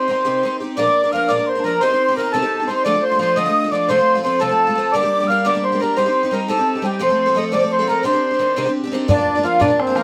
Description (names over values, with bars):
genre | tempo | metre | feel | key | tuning
celtic folk, Celtic jig | 115 BPM (dotted quarters) | 6/8 | straight | C dorian | A4 = 440 Hz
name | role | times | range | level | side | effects
mellow accordion | melody | 0.0-10.0 s | Bb3 to F5 | -19 LUFS | equal | plate reverb
breathy concert flute | second line | 0.0-10.0 s | C5 to F6 | -27 LUFS | equal | none
picked twelve-string acoustic guitar | accompaniment | 0.0-10.0 s | F2 to Bb4 | -24 LUFS | equal | none
bodhran | percussion | 9.1-10.0 s | none | -24 LUFS | equal | none
room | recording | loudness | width
moderate studio reverb, RT60 0.7 s | none | -18 LUFS | mono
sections
0.8-9.1 A section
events
none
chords
0.0 Cm; 0.8 Bb; 1.8 Cm; 2.9 Dm; 3.9 F; 4.9 Gm; 6.0 Cm/G; 7.0 F; 8.0 Cmadd9; 9.1 Bb